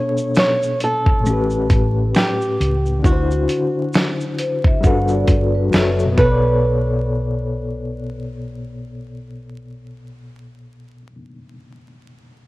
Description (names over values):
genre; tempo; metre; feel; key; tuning
lo-fi hip hop; 67 BPM; 4/4; swing 58% on 16ths; B minor; A4 = 435 Hz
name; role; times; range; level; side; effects
flamenco guitar; melody; 0.0-11.1 s; F#4 to C#5; -21 LUFS; right 2 dB; low-pass filter
overdriven reed electric piano; accompaniment; 0.0-12.5 s; A2 to E5; -22 LUFS; left 3 dB; fast tremolo, cassette tape, low-pass filter
dusty soul sampler-style drum kit; drums; 0.2-6.4 s; hi-hat, kick drum, shaker, snare drum; -18 LUFS; equal; cassette tape
finger snap; percussion; 0.4-7.0 s; none; -36 LUFS; right 5 dB; none
hollow-body short-scale fingered electric bass; bass; 1.3-11.1 s; F#1 to D2; -21 LUFS; equal; none
vibraphone with soft mallets; second line; 4.4-6.0 s; B4 to F#5; -25 LUFS; right 1 dB; low-pass filter, cassette tape
room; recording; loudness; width
light reverb; home recording on cassette, vinyl crackle; -15 LUFS; side -19 dB against mid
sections
0.0-6.6 A section; 6.6-10.2 B section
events
none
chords
0.0 Bm9; 1.3 A9; 3.0 D9; 4.8 Gmaj9; 5.7 F#m7; 6.2 Bm9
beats
0.36 1.26 2.15 | 3.05 3.94 4.84 5.74 | 6.63 7.53 8.42 9.32